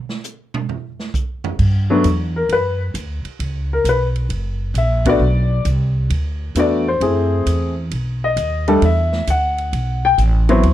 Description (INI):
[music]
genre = jazz piano trio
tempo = 133 BPM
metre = 4/4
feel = swing 68% on 8ths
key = G major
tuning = A4 = 440 Hz
[part]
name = swinging big-band drum kit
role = drums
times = 0.1-10.7 s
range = crash cymbal, hi-hat, kick drum, ride cymbal, snare drum, toms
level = -28 LUFS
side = right 3 dB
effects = none
[part]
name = upright bass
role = bass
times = 1.6-10.7 s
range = F#1 to G2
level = -18 LUFS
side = equal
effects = none
[part]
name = warm grand piano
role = melody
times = 1.9-10.7 s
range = F#3 to G5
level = -17 LUFS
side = left 2 dB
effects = plate reverb
[sound]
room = light reverb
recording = dark, warm production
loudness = -16 LUFS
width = side -12 dB against mid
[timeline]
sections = 0.0-1.6 A section; 1.6-10.7 B section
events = drum solo 0.0-1.6; band accent 5.0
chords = 0.0 N.C.; 1.6 Gmaj7; 3.4 Bsus2; 4.3 F#; 5.2 Bm; 7.0 F#m7b5; 7.9 B7; 8.8 D69